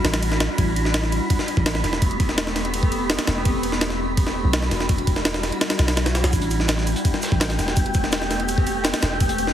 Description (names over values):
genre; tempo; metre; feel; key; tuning
drum and bass, jungle; 167 BPM; 4/4; straight; A minor; A4 = 440 Hz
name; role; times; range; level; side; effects
granular cloud pad; sustained chords; 0.0-9.5 s; G3 to G4; -26 LUFS; equal; built-in reverb, vintage 12-bit sampler grit
long sustained 808-style bass; bass; 0.0-9.5 s; E1 to B1; -25 LUFS; equal; none
jungle sampler-style drum kit; drums; 0.0-9.5 s; kick drum, ride cymbal, snare drum; -22 LUFS; equal; none
wind-like tuned noise texture; texture; 0.0-9.5 s; G5 to B5; -30 LUFS; equal; built-in reverb
crunchy breakbeat drum kit; drums; 6.3-9.5 s; hi-hat, shaker, snare drum; -32 LUFS; right 2 dB; none
room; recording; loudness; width
light reverb, small room ambience; heavily compressed radio sound, multiband compression; -19 LUFS; side -10 dB against mid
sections
0.0-9.5 A section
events
none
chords
0.0 Em9; 0.6 Am9; 3.5 Em9; 6.3 Am9